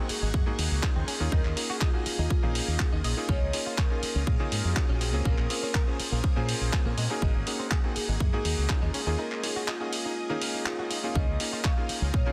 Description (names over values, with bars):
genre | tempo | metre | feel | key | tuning
nu-disco, nu disco | 122 BPM | 4/4 | straight | unclear | A4 = 441 Hz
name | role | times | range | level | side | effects
clear electric grand piano | accompaniment | 0.0-12.3 s | Bb3 to F5 | -36 LUFS | equal | delay
string machine, full ensemble | sustained chords | 0.0-12.3 s | Ab4 to Eb6 | -44 LUFS | equal | ensemble chorus, vintage 12-bit sampler grit, sidechain pumping
direct-recorded clean electric guitar | riff | 0.0-12.3 s | Ab2 to Eb5 | -43 LUFS | equal | ensemble chorus, delay
vibraphone with soft mallets | melody | 0.1-12.3 s | F4 to F5 | -40 LUFS | equal | tape echo
fingered electric bass with an envelope filter | bass | 0.1-12.2 s | Ab1 to Bb2 | -32 LUFS | equal | none
dusty soul sampler-style drum kit | drums | 0.1-12.0 s | handclaps, hi-hat | -35 LUFS | equal | soft clipping on snare
electronic kick drum | drums | 0.3-12.2 s | none | -29 LUFS | equal | none
room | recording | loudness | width
light reverb, digital ambience | dense, heavily limited modern master | -28 LUFS | mono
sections
0.0-12.3 A section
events
break 9.2-11.2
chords
0.0 Ab7sus4; 1.1 Eb7sus4; 3.3 Db6; 5.3 Bbm7; 7.2 Ab7sus4; 8.9 Eb7sus4; 11.2 Db6